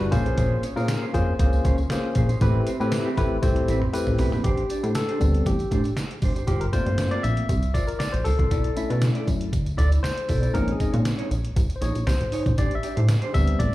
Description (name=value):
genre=early-eighties boogie funk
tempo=118 BPM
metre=4/4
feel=straight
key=unclear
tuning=A4 = 439 Hz
part: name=barky tine electric piano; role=accompaniment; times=0.0-13.7 s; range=G3 to E5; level=-27 LUFS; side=left 2 dB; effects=overdrive, slapback echo
part: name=mellow electric guitar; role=riff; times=0.0-13.6 s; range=C4 to E5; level=-33 LUFS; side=right 3 dB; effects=wide subtle chorus
part: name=plucky analog bass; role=bass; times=0.0-13.7 s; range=G1 to B2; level=-23 LUFS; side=equal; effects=none
part: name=detuned 8-bit digital drum machine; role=drums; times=0.1-13.7 s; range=hi-hat, kick drum, snare drum, toms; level=-26 LUFS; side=equal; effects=none
part: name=tambourine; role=percussion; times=0.1-13.7 s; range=none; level=-45 LUFS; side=right 3 dB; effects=none
room=digital ambience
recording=live gig heard through the venue's PA, club ambience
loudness=-21 LUFS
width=side -16 dB against mid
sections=0.0-4.4 A section; 4.4-13.7 B section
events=drum fill 3.4-4.4; tine electric piano solo 4.4-13.7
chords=0.1 Bbm9; 2.4 Am9; 4.4 Am11; 6.5 Gm11; 8.5 Bm11; 10.5 Bbm11; 12.6 Am11